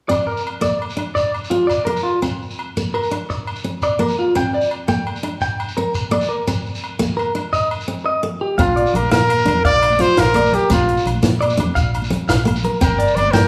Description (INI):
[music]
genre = highlife guitar band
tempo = 113 BPM (dotted quarters)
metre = 12/8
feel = straight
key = Bb major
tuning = A4 = 444 Hz
[part]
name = picked steel-string acoustic guitar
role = accompaniment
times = 0.1-13.5 s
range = Bb3 to D4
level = -26 LUFS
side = equal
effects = none
[part]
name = clean electric guitar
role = arpeggios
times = 0.1-13.5 s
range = F4 to G5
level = -23 LUFS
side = equal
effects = none
[part]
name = agogo bells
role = percussion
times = 0.1-13.4 s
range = none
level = -34 LUFS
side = equal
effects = none
[part]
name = shekere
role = percussion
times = 0.1-13.4 s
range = none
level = -29 LUFS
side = equal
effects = none
[part]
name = bright trumpet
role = melody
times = 8.6-13.5 s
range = F4 to D5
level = -18 LUFS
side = equal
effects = none
[part]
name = fingered electric bass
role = bass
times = 8.6-13.5 s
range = G1 to Bb2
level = -24 LUFS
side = equal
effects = none
[part]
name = compact cocktail drum kit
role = drums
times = 8.6-13.4 s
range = hi-hat, kick drum, snare drum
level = -24 LUFS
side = equal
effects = none
[part]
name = congas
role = percussion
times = 8.6-13.3 s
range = none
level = -29 LUFS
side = equal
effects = none
[sound]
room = wet large studio reverb, RT60 1.3 s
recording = band playing live in one room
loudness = -18 LUFS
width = mono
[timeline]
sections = 0.1-8.6 A section; 8.6-13.5 B section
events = none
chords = 0.1 Bb; 4.4 Gm; 6.5 Eb5; 8.6 Bb; 12.8 Gm